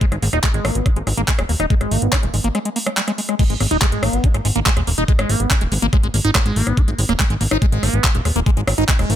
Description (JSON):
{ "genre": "psychedelic trance", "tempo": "142 BPM", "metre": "4/4", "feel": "straight", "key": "G# minor", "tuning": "A4 = 440 Hz", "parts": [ { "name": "liquid acid bass", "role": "riff", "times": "0.0-9.2 s", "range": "G3 to D#4", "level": "-22 LUFS", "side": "moving between left 3 dB and right 5 dB", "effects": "phaser, auto-pan, sidechain pumping, tape echo" }, { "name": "electronic kick drum", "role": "drums", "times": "0.0-9.0 s", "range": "none", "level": "-17 LUFS", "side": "equal", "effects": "none" }, { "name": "garage drum kit", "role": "drums", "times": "0.0-9.2 s", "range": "crash cymbal, handclaps, hi-hat, rim click", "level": "-22 LUFS", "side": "equal", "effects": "none" }, { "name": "fat analog bass", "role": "bass", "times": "0.1-9.2 s", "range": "D#1 to G#1", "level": "-20 LUFS", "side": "equal", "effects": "tube saturation" } ], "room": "digital ambience", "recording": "none", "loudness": "-15 LUFS", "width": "side -11 dB against mid", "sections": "0.0-3.4 A section; 3.4-9.2 B section", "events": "filter sweep on acid bass 0.0-3.4; break 2.5-3.4; drop 3.4-9.2", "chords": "0.0 G#5", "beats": "| 0.01 0.44 0.86 1.28 | 1.70 2.13 2.55 2.97 | 3.39 3.82 4.24 4.66 | 5.08 5.51 5.93 6.35 | 6.77 7.20 7.62 8.04 | 8.46 8.89" }